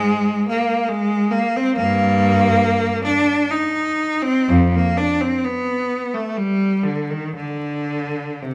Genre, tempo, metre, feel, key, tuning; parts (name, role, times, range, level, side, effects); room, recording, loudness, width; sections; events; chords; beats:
classical, free, expressive piece for unaccompanied cello; 56-73 BPM; 3/4; rubato; C minor; A4 = 439 Hz
rich cello; solo; 0.0-8.5 s; F2 to Eb4; -19 LUFS; equal
moderate recital hall reverb, RT60 1.8 s; close, detailed microphones, vinyl crackle; -19 LUFS; mono
0.0-8.5 A section
0.07 0.91 | 1.75 2.63 3.50 | 4.48 5.45 6.37 | 7.36 8.41